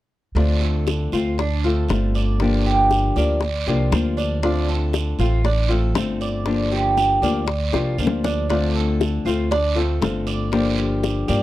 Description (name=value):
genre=latin, Cuban son and guajira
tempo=118 BPM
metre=4/4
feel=straight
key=D minor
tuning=A4 = 440 Hz
part: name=upright bass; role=bass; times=0.3-11.4 s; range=G1 to G2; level=-22 LUFS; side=right 1 dB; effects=none
part: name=nylon-string guitar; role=accompaniment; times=0.4-11.4 s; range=D3 to G4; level=-23 LUFS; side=left 3 dB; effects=none
part: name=Cuban tres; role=arpeggios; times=0.4-11.4 s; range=D4 to D5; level=-25 LUFS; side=right 3 dB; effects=none
part: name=bongos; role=percussion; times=0.4-11.4 s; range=none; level=-24 LUFS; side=left 6 dB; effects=none
part: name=guiro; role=percussion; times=0.4-11.4 s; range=none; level=-33 LUFS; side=right 9 dB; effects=none
room=little or no reverb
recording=dry, close 1970s-style studio recording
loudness=-18 LUFS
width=side -15 dB against mid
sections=0.4-11.4 A section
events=drum fill 7.7-8.5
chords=0.4 Dm7; 2.4 Gm7; 4.4 Dm7; 6.5 Gm7; 8.5 Dm7; 10.5 Gm7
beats=| 0.36 0.87 1.38 1.89 | 2.40 2.91 3.42 3.92 | 4.43 4.94 5.45 5.96 | 6.47 6.97 7.48 7.99 | 8.50 9.01 9.52 10.02 | 10.53 11.04